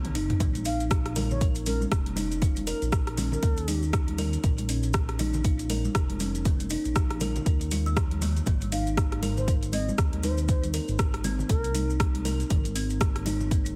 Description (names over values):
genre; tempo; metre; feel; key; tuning
afro house; 119 BPM; 4/4; swing 58% on 16ths; Bb minor; A4 = 435 Hz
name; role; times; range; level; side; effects
kalimba; arpeggios; 0.0-13.6 s; F3 to Bb4; -36 LUFS; equal; sidechain pumping, dub echo
dark detuned saw bass; bass; 0.0-13.8 s; F1 to Eb2; -32 LUFS; equal; sidechain pumping
deep house drum kit; drums; 0.0-13.7 s; hi-hat, rim click, toms; -36 LUFS; equal; none
electronic kick drum; drums; 0.4-13.6 s; none; -28 LUFS; equal; none
congas; percussion; 0.4-13.5 s; none; -37 LUFS; equal; none
maracas; percussion; 0.4-13.7 s; none; -44 LUFS; equal; none
mellow bansuri; melody; 0.7-3.8, 8.7-11.9 s; Bb4 to F5; -39 LUFS; equal; dub echo
room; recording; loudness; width
light reverb, small room reverb; heavily compressed radio sound, multiband compression; -27 LUFS; mono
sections
0.0-13.8 A section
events
drum fill 0.0-0.4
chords
0.4 Bb5; 8.5 Ab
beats
| 0.40 0.91 1.41 1.92 | 2.42 2.92 3.43 3.93 | 4.44 4.94 5.45 5.95 | 6.45 6.96 7.46 7.97 | 8.47 8.97 9.48 9.98 | 10.49 10.99 11.49 12.00 | 12.50 13.01 13.51